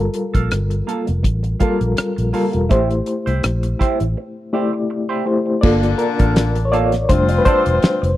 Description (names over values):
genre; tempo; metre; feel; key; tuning
lush 1970s-style soul; 82 BPM; 4/4; swing 54% on 16ths; G dorian; A4 = 441 Hz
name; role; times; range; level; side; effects
reed electric piano; accompaniment; 0.0-8.2 s; G3 to D5; -20 LUFS; left 2 dB; fast tremolo
vintage muted fingered electric bass; bass; 0.0-8.2 s; E1 to C2; -19 LUFS; equal; none
semi-hollow electric guitar; riff; 0.1-8.1 s; Bb3 to D5; -23 LUFS; right 5 dB; wah
damped 70s drum kit; drums; 0.1-8.2 s; crash cymbal, hi-hat, kick drum, rim click, snare drum; -18 LUFS; equal; none
warm horn section; stabs; 5.6-8.2 s; D3 to F4; -23 LUFS; left 6 dB; none
room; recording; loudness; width
little or no reverb; dry, close 1970s-style studio recording; -15 LUFS; side -14 dB against mid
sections
0.0-5.6 A section; 5.6-8.2 B section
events
break 4.2-5.6; reed electric piano solo 5.6-8.2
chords
0.0 Gm9; 2.7 Am7; 5.6 Gm9; 7.1 F6